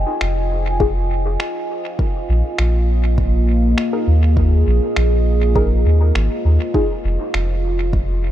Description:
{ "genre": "ambient dub", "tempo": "101 BPM", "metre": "4/4", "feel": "straight", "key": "unclear", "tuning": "A4 = 440 Hz", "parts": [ { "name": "deep dark ambient pad", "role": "sustained chords", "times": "0.0-8.3 s", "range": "Bb3 to Ab5", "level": "-22 LUFS", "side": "equal", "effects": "chorus, built-in reverb" }, { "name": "soft dub sub bass", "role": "bass", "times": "0.0-8.3 s", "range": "F1 to Eb2", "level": "-16 LUFS", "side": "equal", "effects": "none" }, { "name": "electronic finger snaps", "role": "drums", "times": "0.2-7.5 s", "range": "none", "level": "-28 LUFS", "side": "equal", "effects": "studio reverb, dub echo" }, { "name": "filtered dub chord stab", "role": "stabs", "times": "0.8-6.9 s", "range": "Eb4 to Bb4", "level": "-25 LUFS", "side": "left 2 dB", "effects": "phaser, dub echo" }, { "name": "electronic kick drum", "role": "drums", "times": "0.8-8.1 s", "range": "none", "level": "-20 LUFS", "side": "equal", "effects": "overdrive, studio reverb" } ], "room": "little or no reverb", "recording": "none", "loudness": "-15 LUFS", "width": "side -12 dB against mid", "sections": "0.0-8.3 A section", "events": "none", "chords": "0.0 Fm7; 2.0 Bb7sus4; 6.7 Fm7" }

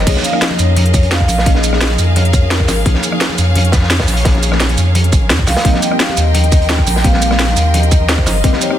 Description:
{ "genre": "liquid drum and bass", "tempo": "172 BPM", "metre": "4/4", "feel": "straight", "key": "unclear", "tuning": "A4 = 440 Hz", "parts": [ { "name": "vibraphone with soft mallets", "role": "melody", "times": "0.0-2.8, 5.5-8.8 s", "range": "Bb4 to G5", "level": "-20 LUFS", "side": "left 1 dB", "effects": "digital delay" }, { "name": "deep mellow chord stab", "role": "accompaniment", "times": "0.0-8.8 s", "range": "F3 to Ab4", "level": "-21 LUFS", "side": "left 2 dB", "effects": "chorus, phaser, vintage 12-bit sampler grit, tape echo" }, { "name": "clear symphonic string section", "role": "sustained chords", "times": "0.0-8.8 s", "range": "Ab4 to C6", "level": "-23 LUFS", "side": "left 1 dB", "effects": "none" }, { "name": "warm sub bass", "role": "bass", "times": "0.0-8.5 s", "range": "G1 to F2", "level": "-14 LUFS", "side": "equal", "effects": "tube saturation" }, { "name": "crunchy breakbeat drum kit", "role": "drums", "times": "0.1-8.7 s", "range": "hi-hat, snare drum", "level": "-22 LUFS", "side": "equal", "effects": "high-pass filter on hats, high-pass filter on snare, high-pass filter on room" }, { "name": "drum and bass drum kit", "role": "drums", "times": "0.1-8.8 s", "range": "crash cymbal, hi-hat, rim click, shaker, snare drum", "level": "-18 LUFS", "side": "equal", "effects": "none" }, { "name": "electronic kick drum", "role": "drums", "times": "0.1-8.5 s", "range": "none", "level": "-13 LUFS", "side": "equal", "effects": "none" }, { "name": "congas", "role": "percussion", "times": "0.2-8.6 s", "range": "none", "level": "-23 LUFS", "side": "right 2 dB", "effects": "none" } ], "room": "light reverb, small room reverb", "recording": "dense, heavily limited modern master", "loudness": "-10 LUFS", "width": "side -11 dB against mid", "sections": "0.0-8.8 A section", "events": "none", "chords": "0.1 Db6; 5.5 Cm7" }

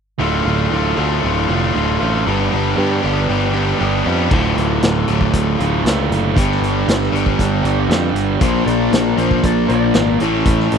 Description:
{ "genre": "classic rock", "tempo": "117 BPM", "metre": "4/4", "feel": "straight", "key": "D minor", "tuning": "A4 = 441 Hz", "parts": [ { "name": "raw garage guitar", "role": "riff", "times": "0.2-10.8 s", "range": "D2 to G4", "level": "-19 LUFS", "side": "left 12 dB", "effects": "overdrive" }, { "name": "sludgy distorted guitar", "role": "riff", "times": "0.2-10.8 s", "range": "D2 to Bb4", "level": "-19 LUFS", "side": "right 13 dB", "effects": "overdrive" }, { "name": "picked electric bass", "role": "bass", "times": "0.2-10.8 s", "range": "D1 to G2", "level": "-20 LUFS", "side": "equal", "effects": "none" }, { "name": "vintage drum kit", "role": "drums", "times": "4.3-10.8 s", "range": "crash cymbal, hi-hat, kick drum, snare drum", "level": "-19 LUFS", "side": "equal", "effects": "none" }, { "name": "clean lap steel guitar", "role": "second line", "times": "8.4-10.2 s", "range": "C5 to D5", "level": "-24 LUFS", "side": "left 5 dB", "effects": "none" } ], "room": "small room ambience", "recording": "dry, close 1970s-style studio recording", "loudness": "-14 LUFS", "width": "side -6 dB against mid", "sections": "0.2-4.3 A section; 4.3-10.8 B section", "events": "none", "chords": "0.2 Dm; 2.3 G; 4.3 Dm; 6.4 G; 8.4 Bb; 10.2 A" }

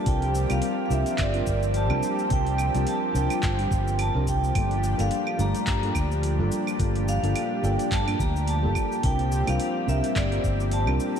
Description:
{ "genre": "sunset chillout", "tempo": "107 BPM", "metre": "4/4", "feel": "swing 57% on 16ths", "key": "unclear", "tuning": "A4 = 440 Hz", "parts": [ { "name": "vibraphone with hard mallets", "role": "melody", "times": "0.0-11.2 s", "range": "D5 to Bb5", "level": "-30 LUFS", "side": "right 2 dB", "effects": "ping-pong delay, shimmer reverb" }, { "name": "mellow FM electric piano", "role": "accompaniment", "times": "0.0-11.2 s", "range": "G3 to Bb4", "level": "-31 LUFS", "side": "left 1 dB", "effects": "chorus, auto-pan, analog delay, shimmer reverb" }, { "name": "lush unison pad", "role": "sustained chords", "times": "0.0-11.2 s", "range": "Bb2 to G4", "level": "-30 LUFS", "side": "equal", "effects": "chorus, shimmer reverb" }, { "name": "fingered electric bass", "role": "bass", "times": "0.1-11.0 s", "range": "G1 to G2", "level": "-26 LUFS", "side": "equal", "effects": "none" }, { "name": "electronic kick drum", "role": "drums", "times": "0.1-10.6 s", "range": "none", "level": "-28 LUFS", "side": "equal", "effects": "studio reverb" }, { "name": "smooth R&B drum kit", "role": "drums", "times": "0.1-11.2 s", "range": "claves, handclaps, hi-hat, shaker", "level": "-35 LUFS", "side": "right 2 dB", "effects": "studio reverb" } ], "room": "moderate lush hall reverb, RT60 2.5 s", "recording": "dreamy mix soaked in reverb", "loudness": "-22 LUFS", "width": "side -8 dB against mid", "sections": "0.0-11.2 A section", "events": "none", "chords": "0.1 C7sus4; 4.5 Gm7; 9.0 C7sus4" }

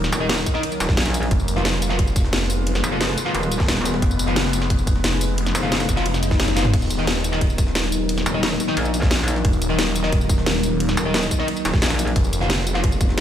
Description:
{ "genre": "dark technical drum and bass", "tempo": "177 BPM", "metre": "4/4", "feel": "straight", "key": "Eb minor", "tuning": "A4 = 444 Hz", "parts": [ { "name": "deep dark ambient pad", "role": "sustained chords", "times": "0.0-13.2 s", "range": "Gb3 to Cb5", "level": "-26 LUFS", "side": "left 1 dB", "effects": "chorus, built-in reverb, sidechain pumping" }, { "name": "phased detuned saw bass", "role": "bass", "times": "0.0-13.2 s", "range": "Eb1 to Gb1", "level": "-23 LUFS", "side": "equal", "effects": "phaser, tube saturation" }, { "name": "drum and bass drum kit", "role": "drums", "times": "0.0-13.2 s", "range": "crash cymbal, hi-hat, snare drum, tambourine, toms", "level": "-24 LUFS", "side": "equal", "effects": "small room ambience" }, { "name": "jungle sampler-style drum kit", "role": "drums", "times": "0.0-13.2 s", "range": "ride cymbal, snare drum", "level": "-33 LUFS", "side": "equal", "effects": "none" }, { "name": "metallic wobble bass", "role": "bass", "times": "0.1-5.9, 8.3-12.1 s", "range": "Eb1 to Bb1", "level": "-22 LUFS", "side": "equal", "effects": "distortion, chorus, tube saturation" }, { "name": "fuzz guitar", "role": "stabs", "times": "0.2-12.8 s", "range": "Eb4 to F5", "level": "-28 LUFS", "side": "left 1 dB", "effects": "distortion, ping-pong delay" }, { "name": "electronic kick drum", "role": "drums", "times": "0.5-13.1 s", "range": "none", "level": "-20 LUFS", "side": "equal", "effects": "small room ambience" }, { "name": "swell", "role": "sound effects", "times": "6.2-6.7 s", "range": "none", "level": "-31 LUFS", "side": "left 4 dB", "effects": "none" } ], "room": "light reverb", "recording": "played on a big sound system in a bare room, large studio reverb", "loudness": "-18 LUFS", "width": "side -10 dB against mid", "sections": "0.0-13.2 A section", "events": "swell 6.2-6.7; drum fill 6.5", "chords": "0.0 Ebm; 1.3 Fdim; 6.7 Ebm; 12.2 Fdim" }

